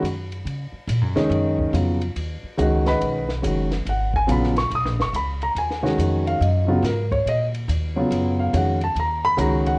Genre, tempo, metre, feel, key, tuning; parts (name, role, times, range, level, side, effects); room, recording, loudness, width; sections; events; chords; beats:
modal jazz; 141 BPM; 4/4; swing 64% on 8ths; B lydian; A4 = 440 Hz
dark concert grand piano; accompaniment; 0.0-9.8 s; C#3 to D#6; -21 LUFS; equal; cassette tape
upright bass; bass; 0.0-9.8 s; F#1 to C#3; -23 LUFS; equal
compact cocktail drum kit; drums; 0.0-9.7 s; hi-hat, kick drum, ride cymbal, snare drum; -33 LUFS; equal; cassette tape
light reverb, studio ambience; home recording on cassette, lossy compression artefacts; -19 LUFS; side -29 dB against mid
0.0-9.8 A section
0.0 Bmaj9
0.03 0.46 0.88 | 1.31 1.73 2.16 2.58 | 3.01 3.43 3.86 4.28 | 4.71 5.13 5.56 5.98 | 6.41 6.83 7.26 7.68 | 8.11 8.53 8.96 9.38